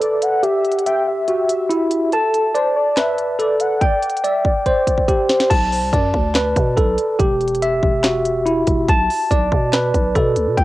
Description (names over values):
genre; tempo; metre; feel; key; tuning
hip hop, trap; 142 BPM; 4/4; half-time; B phrygian; A4 = 439 Hz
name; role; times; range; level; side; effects
warm velvety synth lead; second line; 0.0-5.5 s; A4 to G5; -22 LUFS; left 1 dB; chorus, analog delay
tine electric piano; arpeggios; 0.0-10.6 s; E4 to A5; -17 LUFS; equal; fast stereo tremolo, low-pass filter, analog delay
trap drum kit; drums; 0.0-10.6 s; crash cymbal, handclaps, hi-hat, kick drum, snare drum; -20 LUFS; equal; cassette tape
growling 808-style bass; bass; 5.5-10.6 s; E1 to B2; -22 LUFS; equal; none
room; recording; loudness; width
light reverb; home recording on cassette; -15 LUFS; side -17 dB against mid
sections
0.0-5.5 A section; 5.5-10.6 B section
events
filter sweep on tine electric piano 0.0-5.5; drum fill 4.7-5.5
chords
0.4 Emadd9; 2.1 Bm7; 3.8 Csus2; 5.5 Bm7; 7.2 Emadd9; 8.9 Bm7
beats
0.01 | 0.43 0.86 1.28 1.70 | 2.12 2.55 2.97 3.39 | 3.81 4.24 4.66 5.08 | 5.50 5.93 6.35 6.77 | 7.20 7.62 8.04 8.46 | 8.88 9.31 9.73 10.15 | 10.57